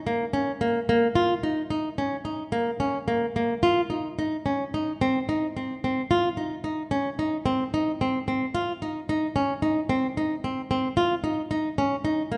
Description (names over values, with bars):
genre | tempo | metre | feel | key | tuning
contemporary instrumental, contemporary | 221 BPM (eighths) | 9/8 | straight | unclear | A4 = 441 Hz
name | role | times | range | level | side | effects
flamenco guitar | solo | 0.1-12.4 s | Bb3 to F4 | -26 LUFS | equal | none
room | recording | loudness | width
wet recital hall reverb, RT60 1.6 s | nothing above 10.7 kHz | -26 LUFS | mono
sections
0.0-12.4 A section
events
none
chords
none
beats
| 0.08 0.35 0.62 0.89 1.17 1.44 1.71 1.99 2.26 | 2.53 2.81 3.08 3.35 3.63 3.90 4.18 4.45 4.73 | 5.01 5.28 5.56 5.83 6.10 6.38 6.65 6.92 7.19 | 7.46 7.73 8.01 8.28 8.55 8.82 9.09 9.35 9.62 | 9.89 10.16 10.43 10.70 10.97 11.23 11.51 11.77 12.04 | 12.31